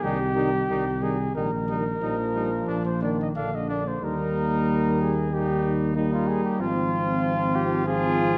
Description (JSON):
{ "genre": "classical, brass quintet", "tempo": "92 BPM", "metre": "4/4", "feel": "rubato", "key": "Eb major", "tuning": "A4 = 435 Hz", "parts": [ { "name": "mellow trumpet", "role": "melody", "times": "0.0-8.4 s", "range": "Eb4 to F5", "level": "-31 LUFS", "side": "equal", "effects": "none" }, { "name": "clear trombone", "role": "accompaniment", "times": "0.0-8.4 s", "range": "D3 to G3", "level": "-32 LUFS", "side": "equal", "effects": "none" }, { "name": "mellow French horn", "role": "accompaniment", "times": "0.0-8.4 s", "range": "G3 to C4", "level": "-34 LUFS", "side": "equal", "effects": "none" }, { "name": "mellow tuba", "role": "bass", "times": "0.0-8.4 s", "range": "Ab1 to Eb2", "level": "-30 LUFS", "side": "equal", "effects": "none" }, { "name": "clear trumpet", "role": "second line", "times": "0.1-8.4 s", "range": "D4 to F4", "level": "-34 LUFS", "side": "equal", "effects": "none" } ], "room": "wet recital hall reverb, RT60 1.3 s", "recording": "dark, warm production", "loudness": "-25 LUFS", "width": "mono", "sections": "0.0-8.4 A section", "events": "none", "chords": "0.0 Cm; 1.4 Eb/Bb; 2.7 Bb; 4.0 Eb; 6.6 Fm/Ab" }